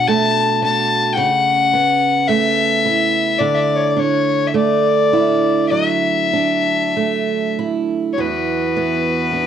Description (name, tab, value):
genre	celtic folk, Celtic slow air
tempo	46-55 BPM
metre	4/4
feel	rubato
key	unclear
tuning	A4 = 440 Hz
part	rich fiddle	melody	0.0-9.5 s	B4 to A5	-16 LUFS	left 5 dB	cassette tape
part	picked steel-string acoustic guitar	accompaniment	0.0-9.5 s	E2 to F#4	-18 LUFS	right 7 dB	cassette tape
part	accordion	sustained chords	8.2-9.5 s	E3 to F#4	-23 LUFS	right 1 dB	cassette tape
room	moderate studio reverb, RT60 0.6 s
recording	home recording on cassette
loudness	-14 LUFS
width	side -9 dB against mid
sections	0.0-8.2 A section; 8.2-9.5 B section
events	none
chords	0.0 Bm7; 1.2 Aadd9/C#; 3.4 Dadd9; 8.2 Esus2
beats	0.08 1.18 2.29 | 3.40 4.54 5.71 6.95 | 8.18 9.33